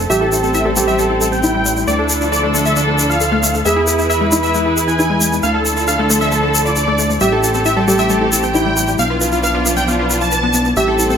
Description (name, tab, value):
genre	uplifting trance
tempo	135 BPM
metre	4/4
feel	straight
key	A minor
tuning	A4 = 435 Hz
part	muted chamber string section	sustained chords	0.0-11.2 s	D3 to B4	-21 LUFS	equal	none
part	fat analog bass	bass	0.0-11.2 s	A1 to E2	-21 LUFS	right 1 dB	none
part	supersaw chords	melody	0.1-11.2 s	D4 to A5	-18 LUFS	right 1 dB	low-pass filter, ping-pong delay
part	felt-muted upright piano	second line	0.1-11.2 s	E4 to G#4	-20 LUFS	equal	ping-pong delay
part	wide unison pluck	arpeggios	0.1-11.1 s	G3 to B4	-21 LUFS	left 2 dB	ping-pong delay
part	egg shaker	percussion	0.1-11.2 s	none	-20 LUFS	left 1 dB	none
room	light reverb, small room ambience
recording	none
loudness	-13 LUFS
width	side -8 dB against mid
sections	0.0-11.2 A section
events	none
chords	0.1 Am7; 1.9 Dm; 3.7 E; 5.4 Dm; 7.2 Am7; 9.0 Bdim